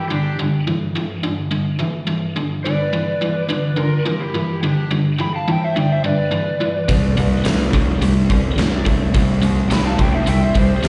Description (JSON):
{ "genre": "blues rock power trio and southern rock", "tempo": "106 BPM", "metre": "4/4", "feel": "straight", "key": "G major", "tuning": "A4 = 441 Hz", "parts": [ { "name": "overdriven slide guitar", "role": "melody", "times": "0.0-10.9 s", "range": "G4 to B5", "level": "-26 LUFS", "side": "equal", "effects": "slapback echo" }, { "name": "lead guitar through a small cranked amp", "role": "second line", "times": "0.0-10.9 s", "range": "D4 to G5", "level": "-32 LUFS", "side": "equal", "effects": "overdrive, slapback echo" }, { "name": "biting overdriven guitar", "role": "riff", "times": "0.0-10.9 s", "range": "G2 to A3", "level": "-22 LUFS", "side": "equal", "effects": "spring reverb, slapback echo" }, { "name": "fuzz fingered electric bass", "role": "bass", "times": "6.9-10.9 s", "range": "C2", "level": "-21 LUFS", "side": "equal", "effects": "overdrive" }, { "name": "huge arena drum kit", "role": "drums", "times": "6.9-10.9 s", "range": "hi-hat, kick drum, snare drum", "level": "-22 LUFS", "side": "equal", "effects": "none" } ], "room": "light reverb", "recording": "live gig heard through the venue's PA, recital hall reverb, nothing above 10.6 kHz", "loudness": "-18 LUFS", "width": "mono", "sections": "0.0-10.9 A section", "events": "none", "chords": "0.0 G; 6.9 C5", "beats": "| 0.10 0.66 1.23 1.80 | 2.36 2.93 3.50 4.06 | 4.63 5.20 5.76 6.33 | 6.89 7.46 8.02 8.58 | 9.15 9.71 10.28 10.84" }